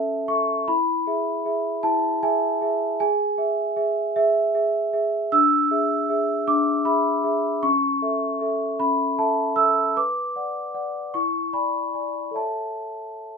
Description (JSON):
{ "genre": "classical, lullaby for celesta", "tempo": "52 BPM (dotted quarters)", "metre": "6/8", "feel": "straight", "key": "unclear", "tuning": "A4 = 440 Hz", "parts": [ { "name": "large celesta", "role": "solo", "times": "0.0-13.4 s", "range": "C#4 to E6", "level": "-20 LUFS", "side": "equal", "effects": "none" } ], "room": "light reverb", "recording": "minimal, uncompressed stereo recording", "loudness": "-20 LUFS", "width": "side -5 dB against mid", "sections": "0.0-13.4 A section", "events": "none", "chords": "0.0 A/C#; 0.7 E; 3.0 E/G#; 5.3 E7/D; 7.6 A/C#; 10.0 Bm; 11.1 E7; 12.3 A" }